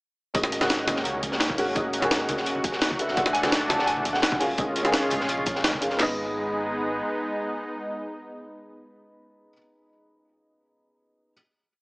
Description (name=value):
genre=liquid drum and bass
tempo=170 BPM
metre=4/4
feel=straight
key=G# minor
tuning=A4 = 440 Hz
part: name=felt-muted upright piano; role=accompaniment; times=0.3-11.3 s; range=B3 to G#5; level=-29 LUFS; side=equal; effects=dub echo
part: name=lush unison pad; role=sustained chords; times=0.3-9.5 s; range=G#3 to F#4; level=-30 LUFS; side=equal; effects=chorus, sidechain pumping
part: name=sub bass with octave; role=bass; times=0.3-7.0 s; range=D#1 to C#2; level=-43 LUFS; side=equal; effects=tube saturation
part: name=crunchy breakbeat drum kit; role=drums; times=0.3-6.0 s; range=hi-hat, snare drum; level=-31 LUFS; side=equal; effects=high-pass filter on hats, high-pass filter on snare, high-pass filter on room
part: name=drum and bass drum kit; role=drums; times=0.3-6.1 s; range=crash cymbal, kick drum, snare drum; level=-29 LUFS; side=equal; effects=none
part: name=jungle sampler-style drum kit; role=drums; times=0.3-5.9 s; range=hi-hat, snare drum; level=-26 LUFS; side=equal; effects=none
part: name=congas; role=percussion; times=0.3-5.8 s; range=none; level=-37 LUFS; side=equal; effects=none
part: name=warm concert grand piano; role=melody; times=3.2-5.6 s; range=F#5 to A5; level=-28 LUFS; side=equal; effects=dub echo
room=moderate lush hall reverb, RT60 1.5 s, small room ambience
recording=small speaker sound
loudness=-23 LUFS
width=side -31 dB against mid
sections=0.3-6.0 drop; 6.0-8.8 final chord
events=drop 0.3-6.0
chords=0.3 G#9sus4; 3.0 E9sus4; 4.4 D#9sus4; 6.0 G#m